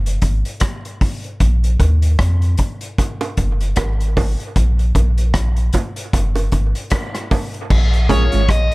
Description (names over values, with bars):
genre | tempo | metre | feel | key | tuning
dub reggae | 76 BPM | 4/4 | swing 58% on 16ths | unclear | A4 = 440 Hz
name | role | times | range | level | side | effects
soft dub sub bass | bass | 0.0-8.7 s | Gb1 to F2 | -16 LUFS | equal | none
vintage drum kit | drums | 0.1-8.7 s | crash cymbal, hi-hat, kick drum, rim click | -19 LUFS | equal | none
bongos | percussion | 1.8-8.3 s | none | -27 LUFS | right 4 dB | dub echo
bluesy overdriven lead guitar | melody | 8.1-8.7 s | Db5 to Eb5 | -21 LUFS | left 2 dB | distortion
mellow electric guitar | accompaniment | 8.1-8.4 s | Ab3 to F4 | -22 LUFS | right 6 dB | dub echo
warm upright piano | stabs | 8.1-8.3 s | F4 to Db5 | -24 LUFS | left 1 dB | dub echo
room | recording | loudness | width
small room ambience | none | -15 LUFS | side -22 dB against mid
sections
0.0-7.7 A section; 7.7-8.7 B section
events
break 0.0-7.7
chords
0.0 Gbsus2; 1.4 Bb5; 3.0 Gbsus2; 4.6 N.C.; 6.1 Gbsus2; 7.7 Bbm7